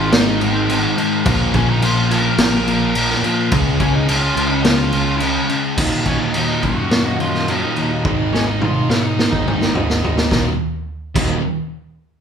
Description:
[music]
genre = quiet-loud alternative rock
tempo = 106 BPM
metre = 4/4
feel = straight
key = Eb dorian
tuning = A4 = 441 Hz
[part]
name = octave-fuzz lead guitar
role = melody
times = 0.0-9.7 s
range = C4 to Bb5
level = -24 LUFS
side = equal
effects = distortion
[part]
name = cranked stack guitar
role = riff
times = 0.0-5.8 s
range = Ab2 to Ab4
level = -24 LUFS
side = equal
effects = overdrive
[part]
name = thick fuzz guitar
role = riff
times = 0.0-11.4 s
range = Eb2 to Eb4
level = -23 LUFS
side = left 7 dB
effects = distortion
[part]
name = thick fuzz guitar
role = riff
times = 0.0-11.4 s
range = Eb2 to Db4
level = -25 LUFS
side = right 7 dB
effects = distortion
[part]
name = fuzz picked electric bass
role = bass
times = 0.0-11.4 s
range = Eb1 to Bb2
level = -23 LUFS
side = right 1 dB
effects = overdrive
[part]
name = raw garage drum kit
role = drums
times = 0.1-11.3 s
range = crash cymbal, kick drum, snare drum, toms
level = -18 LUFS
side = equal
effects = none
[part]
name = electric guitar through a small old amp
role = arpeggios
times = 5.8-11.4 s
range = Eb2 to Eb4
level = -25 LUFS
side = right 3 dB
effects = none
[sound]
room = moderate large studio reverb, RT60 0.9 s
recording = band playing live in one room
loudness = -15 LUFS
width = side -7 dB against mid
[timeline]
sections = 0.0-5.8 A section; 5.8-10.3 B section; 10.3-12.2 C section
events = drum fill 8.0-10.3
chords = 0.0 Ab; 1.3 Bbm; 3.5 Db; 5.8 Ebm; 8.0 Ab; 10.3 Ebm

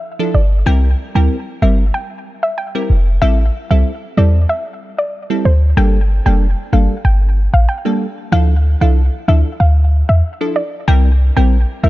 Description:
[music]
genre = dancehall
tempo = 94 BPM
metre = 4/4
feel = straight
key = G dorian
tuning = A4 = 441 Hz
[part]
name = wavetable chord stab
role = accompaniment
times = 0.2-11.9 s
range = F3 to Bb4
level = -20 LUFS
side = right 1 dB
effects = none
[part]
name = soft round pluck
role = melody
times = 0.3-11.9 s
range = C5 to G5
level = -22 LUFS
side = equal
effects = chorus, digital delay
[part]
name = clean 808-style bass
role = bass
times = 0.3-11.9 s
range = F1 to E2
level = -11 LUFS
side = equal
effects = none
[sound]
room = digital ambience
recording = dark, warm production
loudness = -12 LUFS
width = side -17 dB against mid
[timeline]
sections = 0.0-5.8 A section; 5.8-11.9 B section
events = none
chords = 0.0 Dmadd9; 0.7 C7; 3.2 Am7; 5.8 Gmadd9; 8.3 Dmadd9; 10.9 C7

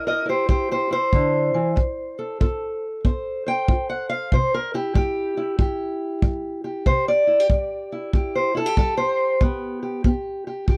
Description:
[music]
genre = acoustic country blues, solo or duo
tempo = 94 BPM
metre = 4/4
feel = swing 64% on 8ths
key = C major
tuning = A4 = 440 Hz
[part]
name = fingerpicked steel-string acoustic guitar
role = melody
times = 0.0-10.8 s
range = C3 to G5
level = -24 LUFS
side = equal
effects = none
[part]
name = kick drum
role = drums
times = 0.5-10.8 s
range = none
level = -22 LUFS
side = equal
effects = none
[sound]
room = light reverb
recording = dry, close 1970s-style studio recording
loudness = -22 LUFS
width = mono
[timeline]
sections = 0.0-10.8 A section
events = steel-string acoustic guitar solo 0.0-10.8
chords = 0.0 C; 1.8 F; 4.3 C; 9.4 G

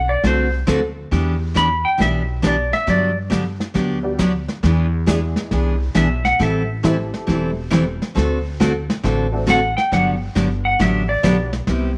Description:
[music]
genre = country, western swing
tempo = 136 BPM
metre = 4/4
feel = swing 66% on 8ths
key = G major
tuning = A4 = 435 Hz
[part]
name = clean lap steel guitar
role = melody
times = 0.0-3.2, 6.0-6.7, 9.5-11.5 s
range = C5 to B5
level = -21 LUFS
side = equal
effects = none
[part]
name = upright bass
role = bass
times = 0.0-12.0 s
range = E1 to G2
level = -25 LUFS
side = equal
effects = none
[part]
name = picked steel-string acoustic guitar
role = accompaniment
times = 0.2-11.9 s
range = C3 to A4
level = -22 LUFS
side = equal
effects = none
[part]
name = vintage brush drum kit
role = drums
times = 0.2-12.0 s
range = brushed snare drum, hi-hat, kick drum, snare drum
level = -25 LUFS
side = equal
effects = none
[part]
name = honky-tonk upright piano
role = accompaniment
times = 4.0-11.5 s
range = G3 to B4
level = -30 LUFS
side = equal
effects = none
[sound]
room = moderate echo chamber reverb, RT60 1.2 s, studio ambience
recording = none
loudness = -19 LUFS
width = mono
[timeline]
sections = 0.0-12.0 A section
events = electric slide guitar solo 0.0-12.0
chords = 0.0 D7; 1.1 Em7; 2.9 Gmaj7; 4.6 E7; 6.4 Am7; 8.2 D7; 9.9 Gmaj7

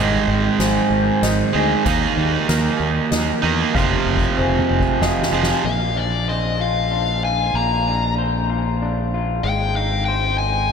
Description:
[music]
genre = post-rock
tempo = 95 BPM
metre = 3/4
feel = straight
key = unclear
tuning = A4 = 439 Hz
[part]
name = electric guitar through a small old amp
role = arpeggios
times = 0.0-10.7 s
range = Ab2 to C5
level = -25 LUFS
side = left 4 dB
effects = lush chorus, tape echo
[part]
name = felt-muted upright piano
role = arpeggios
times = 0.0-5.6 s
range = Bb4 to F5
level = -28 LUFS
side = equal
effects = tape echo
[part]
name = cranked stack guitar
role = riff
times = 0.0-5.6 s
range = F2 to Eb4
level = -20 LUFS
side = right 7 dB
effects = overdrive
[part]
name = growling fingered electric bass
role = bass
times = 0.0-10.7 s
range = F1 to E2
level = -23 LUFS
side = left 1 dB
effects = overdrive
[part]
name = soft-mallet drum kit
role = drums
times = 0.6-10.2 s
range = hi-hat, kick drum, ride cymbal, snare drum, toms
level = -26 LUFS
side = left 1 dB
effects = none
[part]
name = dark smooth lead guitar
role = melody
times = 5.7-10.7 s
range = D5 to Bb5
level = -22 LUFS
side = left 4 dB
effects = overdrive, tape echo
[sound]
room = wet cathedral reverb, RT60 5.3 s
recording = dreamy mix soaked in reverb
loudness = -17 LUFS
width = side -6 dB against mid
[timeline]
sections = 0.0-5.7 A section; 5.7-10.7 B section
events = drum fill 3.8-5.7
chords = 0.0 Ab; 1.9 Ebadd9; 3.8 Fm; 5.7 Bbadd9; 9.4 Abmaj7

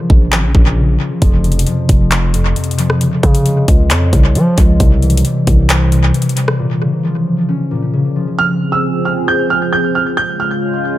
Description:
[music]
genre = hip hop, trap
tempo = 134 BPM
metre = 4/4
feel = half-time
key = F harmonic minor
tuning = A4 = 439 Hz
[part]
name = concert harp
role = accompaniment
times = 0.0-10.4 s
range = F2 to Db5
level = -16 LUFS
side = left 1 dB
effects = tape echo
[part]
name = distorted 808-style bass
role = bass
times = 0.1-6.1 s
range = F1 to F3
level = -13 LUFS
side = equal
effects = distortion
[part]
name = trap drum kit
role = drums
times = 0.1-6.6 s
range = handclaps, hi-hat, kick drum, rim click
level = -13 LUFS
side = equal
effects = tape echo
[part]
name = dark concert grand piano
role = melody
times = 8.4-11.0 s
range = E6 to G6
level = -16 LUFS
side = right 4 dB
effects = tape echo
[part]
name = dark analog pad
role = sustained chords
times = 8.6-11.0 s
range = Db3 to Ab4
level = -17 LUFS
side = right 1 dB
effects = chorus
[sound]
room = digital ambience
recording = echo-heavy mix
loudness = -11 LUFS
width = side -14 dB against mid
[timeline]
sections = 0.0-8.4 A section; 8.4-11.0 B section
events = break 0.0-1.2, 6.6-8.4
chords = 0.0 Bbm; 1.2 F5; 3.0 Db; 4.8 C; 6.6 Bbm; 8.4 Fm; 10.2 Db

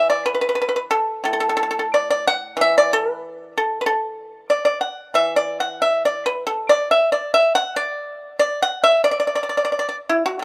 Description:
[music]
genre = chinese traditional, Chinese solo plucked strings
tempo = 92 BPM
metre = 2/4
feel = rubato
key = unclear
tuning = A4 = 440 Hz
[part]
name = pipa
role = solo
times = 0.0-10.4 s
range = A2 to F#5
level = -20 LUFS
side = equal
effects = none
[sound]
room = small room ambience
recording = rough home demo mix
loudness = -20 LUFS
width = mono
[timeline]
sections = 0.0-10.4 A section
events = none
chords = none

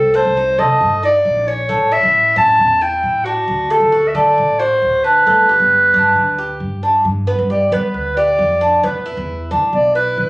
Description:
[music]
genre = latin, Cuban son and guajira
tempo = 134 BPM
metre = 4/4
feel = straight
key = G major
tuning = A4 = 441 Hz
[part]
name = warm clarinet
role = melody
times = 0.0-10.3 s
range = F#4 to A5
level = -13 LUFS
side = equal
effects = none
[part]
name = Cuban tres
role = arpeggios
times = 0.0-10.3 s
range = A3 to G4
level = -18 LUFS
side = equal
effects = none
[part]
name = upright bass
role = bass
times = 0.0-10.3 s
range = G1 to G3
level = -24 LUFS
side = equal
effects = none
[sound]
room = light reverb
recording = recorded on a phone in the room, club reverb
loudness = -12 LUFS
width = side -22 dB against mid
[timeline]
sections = 0.0-7.1 A section; 7.1-10.3 B section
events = clarinet solo 7.1-10.3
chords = 0.0 Cm6; 1.7 A; 3.5 D; 5.3 Gadd9; 7.1 G; 8.8 E5

